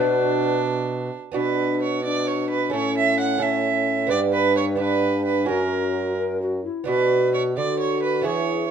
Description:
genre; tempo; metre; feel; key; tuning
classical, renaissance-style consort dance; 87 BPM (dotted quarters); 6/8; straight; B minor; A4 = 445 Hz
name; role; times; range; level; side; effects
mellow hollow tenor recorder; melody; 0.0-8.6 s; C#4 to B4; -25 LUFS; left 7 dB; none
rich violin; second line; 0.0-8.7 s; D4 to F#5; -24 LUFS; right 7 dB; none
lute; accompaniment; 0.0-8.7 s; F#2 to B4; -28 LUFS; right 8 dB; none
warm bassoon; bass; 0.0-8.7 s; F#2 to E3; -26 LUFS; right 2 dB; none
room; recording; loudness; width
moderate large studio reverb, RT60 1.2 s; dark, warm production; -20 LUFS; side -8 dB against mid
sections
0.0-1.4 A section; 1.4-8.7 B section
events
none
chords
0.0 Bm; 2.7 A; 4.1 G; 5.5 F#; 6.9 Bm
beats
0.66 | 1.36 2.05 | 2.74 3.42 | 4.11 4.80 | 5.49 6.19 | 6.88 7.57 | 8.26

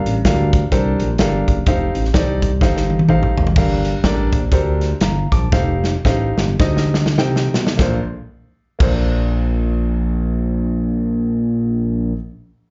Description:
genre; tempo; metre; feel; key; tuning
uptempo gospel; 95-127 BPM; 4/4; swing 60% on 8ths; Bb major; A4 = 439 Hz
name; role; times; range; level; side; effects
warm baby grand piano; accompaniment; 0.0-12.2 s; Bb1 to D6; -24 LUFS; equal; slapback echo
smooth synth bass; bass; 0.1-12.1 s; F1 to D2; -21 LUFS; equal; none
natural country drum kit; drums; 0.1-8.9 s; crash cymbal, hi-hat, kick drum, snare drum, toms; -20 LUFS; equal; none
room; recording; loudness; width
little or no reverb; live gig heard through the venue's PA, club reverb, nothing above 7.5 kHz; -17 LUFS; mono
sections
0.0-3.6 A section; 3.6-7.8 B section; 7.8-12.7 C section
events
drum fill 2.6-3.6, 5.5-7.8; slowing down 3.6-7.8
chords
0.0 Gm9; 1.7 F9; 3.6 Gm9; 5.5 F9; 7.8 Bbmaj9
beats
0.25 0.72 1.19 | 1.67 2.14 2.61 3.08 | 3.56 4.03 4.51 5.01 | 5.52 6.04 6.59 7.17 | 7.79 8.42 9.05 9.68 | 10.32 10.95 11.58

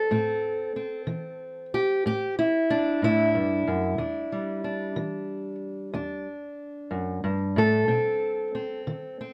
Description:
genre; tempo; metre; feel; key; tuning
acoustic country blues, solo or duo; 62 BPM (dotted quarters); 12/8; straight; E minor; A4 = 438 Hz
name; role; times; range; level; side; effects
fingerpicked steel-string acoustic guitar; solo; 0.0-9.3 s; E2 to A4; -27 LUFS; equal; none
room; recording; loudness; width
light reverb; close, detailed microphones; -27 LUFS; mono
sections
0.0-9.3 A section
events
none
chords
0.0 Am7; 4.0 Em7; 7.9 B7b9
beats
| 0.10 1.07 2.04 3.02 | 3.99 4.97 5.94 6.92 | 7.89 8.87

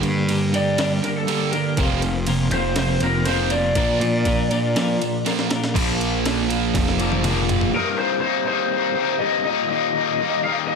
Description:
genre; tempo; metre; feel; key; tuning
quiet-loud alternative rock; 121 BPM; 4/4; straight; unclear; A4 = 441 Hz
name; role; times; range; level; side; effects
twelve-string electric guitar; arpeggios; 0.0-5.7 s; F2 to Bb4; -25 LUFS; left 6 dB; tremolo, plate reverb, tape echo
fuzz guitar; riff; 0.0-7.7 s; F2 to Bb3; -24 LUFS; right 11 dB; distortion
fuzz picked electric bass; bass; 0.0-7.7 s; F1 to Bb2; -24 LUFS; equal; overdrive
breakbeat sampler-style drum kit; drums; 0.0-7.7 s; crash cymbal, kick drum, ride cymbal, snare drum, toms; -26 LUFS; equal; none
lead guitar through a small cranked amp; melody; 0.6-10.8 s; A4 to F5; -23 LUFS; left 1 dB; overdrive, plate reverb
raw garage guitar; riff; 5.7-10.8 s; C2 to Eb4; -23 LUFS; left 15 dB; overdrive, harmonic tremolo
room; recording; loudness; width
moderate large studio reverb, RT60 0.8 s, digital ambience; none; -18 LUFS; side -5 dB against mid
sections
0.0-5.7 A section; 5.7-7.7 B section; 7.7-10.8 C section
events
half time 0.0-5.7; drum fill 5.3-5.7, 6.7-7.7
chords
0.0 Gm; 1.8 Fsus4; 3.8 Bb; 5.7 Bb5; 7.7 Cm7; 9.5 Eb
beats
0.28 0.78 1.27 | 1.77 2.27 2.77 3.26 | 3.76 4.26 4.75 5.25 | 5.75 6.25 6.74 7.24 | 7.73 8.23 8.72 9.21 | 9.71 10.20 10.69

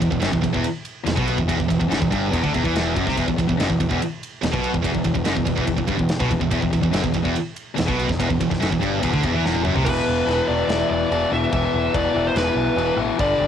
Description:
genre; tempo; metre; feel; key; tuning
heavy metal; 143 BPM; 4/4; straight; E minor; A4 = 440 Hz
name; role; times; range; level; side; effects
heavy high-gain guitar; riff; 0.0-9.9 s; E2 to E3; -23 LUFS; right 8 dB; distortion, cassette tape
high-gain distorted guitar; riff; 0.0-13.5 s; E2 to G3; -24 LUFS; left 10 dB; distortion, cassette tape
growling picked electric bass; bass; 0.0-13.5 s; E1 to E2; -26 LUFS; equal; overdrive
tight metal drum kit; drums; 0.0-13.3 s; crash cymbal, kick drum, ride cymbal, snare drum, toms; -27 LUFS; equal; cassette tape
fuzz guitar; riff; 9.8-13.5 s; E2 to G3; -28 LUFS; right 1 dB; distortion, cassette tape
high-gain lead guitar; melody; 9.9-13.5 s; B4 to E5; -23 LUFS; right 3 dB; distortion, cassette tape
room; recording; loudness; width
little or no reverb; home recording on cassette; -19 LUFS; side -8 dB against mid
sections
0.0-9.9 A section; 9.9-13.5 B section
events
drum fill 9.4-9.9; half time 9.9-13.5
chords
0.0 Em; 9.9 E5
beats
0.23 0.65 1.07 | 1.49 1.91 2.33 2.75 | 3.17 3.59 4.01 4.43 | 4.84 5.26 5.68 6.10 | 6.52 6.94 7.36 7.78 | 8.19 8.61 9.03 9.45 | 9.86 10.28 10.70 11.11 | 11.53 11.95 12.36 12.78 | 13.19

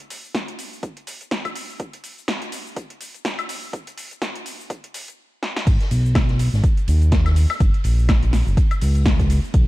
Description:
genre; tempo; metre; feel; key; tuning
deep house; 124 BPM; 4/4; swing 57% on 16ths; G# minor; A4 = 440 Hz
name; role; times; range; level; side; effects
deep house drum kit; drums; 0.0-9.7 s; cabasa, crash cymbal, hi-hat, snare drum, woodblock; -27 LUFS; left 1 dB; overdrive, high-pass filter on hats, high-pass filter on perc, high-pass filter on snare, high-pass filter on cymbals
electronic kick drum; drums; 0.3-9.7 s; none; -19 LUFS; equal; overdrive, high-pass filter on kick
smooth gliding synth bass; bass; 5.7-9.7 s; F#1 to D#2; -17 LUFS; equal; tube saturation, sidechain pumping
vintage drum kit; drums; 5.7-9.7 s; hi-hat, ride cymbal, snare drum; -38 LUFS; equal; high-pass filter on cymbals, high-pass filter on hats, high-pass filter on snare, high-pass filter on room
room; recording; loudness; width
little or no reverb; dark, warm production; -17 LUFS; side -18 dB against mid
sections
0.0-5.7 A section; 5.7-9.7 B section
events
build-up 0.0-5.7; drum fill 5.4; drop 5.7-9.7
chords
none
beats
0.35 0.83 1.31 | 1.80 2.28 2.77 3.25 | 3.73 4.22 4.70 5.18 | 5.67 6.15 6.64 7.12 | 7.60 8.09 8.57 9.06 | 9.54

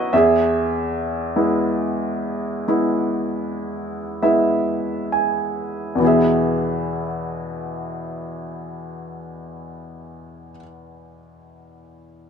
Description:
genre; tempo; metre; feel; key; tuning
classical, lyrical solo piano; 33-52 BPM; 4/4; rubato; E major; A4 = 439 Hz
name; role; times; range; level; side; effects
bright upright piano; solo; 0.0-12.3 s; E2 to G#5; -20 LUFS; equal; none
room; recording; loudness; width
moderate studio reverb, RT60 0.7 s; minimal, uncompressed stereo recording; -19 LUFS; side -7 dB against mid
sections
0.0-6.0 A section; 6.0-12.3 B section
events
slowing down 0.0-6.0; upright piano fill 3.4-6.0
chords
0.1 E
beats
| 0.13 1.35 2.68 4.23 | 6.01 7.76 9.43 11.12

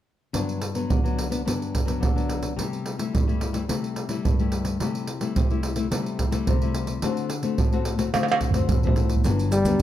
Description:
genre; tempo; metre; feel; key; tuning
samba and choro; 108 BPM; 4/4; straight; G major; A4 = 439 Hz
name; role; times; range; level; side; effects
nylon-string guitar; accompaniment; 0.3-9.8 s; G2 to F#4; -26 LUFS; left 5 dB; none
surdo, pandeiro, tamborim and maracas; percussion; 0.3-9.8 s; none; -24 LUFS; right 2 dB; none
upright bass; bass; 9.3-9.8 s; G1 to D2; -24 LUFS; equal; none
warm trombone; melody; 9.5-9.8 s; G3; -20 LUFS; left 1 dB; none
room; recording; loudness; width
light reverb; none; -22 LUFS; side -12 dB against mid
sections
0.3-9.3 A section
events
drum fill 8.1-9.3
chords
0.3 Gmaj7; 2.6 C6; 4.8 Am7/C; 7.0 D7; 9.3 Gmaj7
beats
| 0.34 0.90 1.45 2.01 | 2.57 3.13 3.69 4.24 | 4.80 5.36 5.91 6.47 | 7.03 7.58 8.14 8.70 | 9.25 9.81

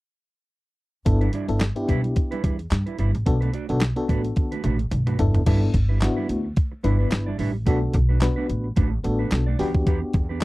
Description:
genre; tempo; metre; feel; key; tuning
early-eighties boogie funk; 109 BPM; 4/4; swing 56% on 16ths; G major; A4 = 441 Hz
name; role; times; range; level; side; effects
FM electric piano with tremolo; accompaniment; 1.1-10.4 s; B3 to B4; -26 LUFS; left 2 dB; none
mellow electric guitar; riff; 1.1-10.4 s; G3 to D5; -30 LUFS; right 5 dB; lush chorus
upright bass; bass; 1.1-10.4 s; G1 to G2; -23 LUFS; equal; none
crisp 8-bit digital drum machine; drums; 1.1-10.4 s; crash cymbal, handclaps, hi-hat, kick drum, snare drum, toms; -23 LUFS; equal; none
room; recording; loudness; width
little or no reverb; dry, close 1970s-style studio recording; -20 LUFS; side -20 dB against mid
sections
1.1-5.5 A section; 5.5-10.4 B section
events
drum fill 4.4-5.5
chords
1.1 G6; 3.3 Bm7; 5.2 G6; 7.7 Bm7; 9.6 Em7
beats
| 1.06 1.61 2.16 2.71 | 3.26 3.81 4.36 4.91 | 5.46 6.01 6.57 7.12 | 7.67 8.22 8.77 9.32 | 9.87 10.42

